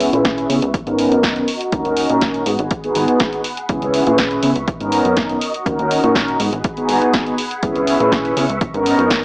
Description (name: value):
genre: filtered disco house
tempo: 122 BPM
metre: 4/4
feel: straight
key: C# dorian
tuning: A4 = 441 Hz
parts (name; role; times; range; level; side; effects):
- mellow synth brass; accompaniment; 0.0-9.2 s; B3 to B4; -16 LUFS; equal; chorus, phaser, sidechain pumping, low-pass filter
- phased string machine; sustained chords; 0.0-9.2 s; F#4 to C#6; -26 LUFS; equal; ensemble chorus, phaser, sidechain pumping, low-pass filter
- plucky analog bass; bass; 0.0-9.2 s; G#1 to C#3; -24 LUFS; equal; tube saturation, sidechain pumping, low-pass filter
- house drum kit; drums; 0.0-9.2 s; hi-hat, snare drum; -22 LUFS; equal; sidechain pumping on hats
- electronic kick drum; drums; 0.2-9.2 s; none; -23 LUFS; equal; none
room: light reverb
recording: dry, gritty hardware recording, small speaker sound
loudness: -14 LUFS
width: side -25 dB against mid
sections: 0.0-9.2 A section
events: filter sweep 0.0-9.2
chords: 0.0 C#m7; 0.7 Bmaj9; 1.5 D#m7; 2.5 G#m7; 3.7 C#m7; 4.7 Bmaj9; 5.4 D#m7; 6.4 G#m7; 7.6 C#m7; 8.6 Bmaj9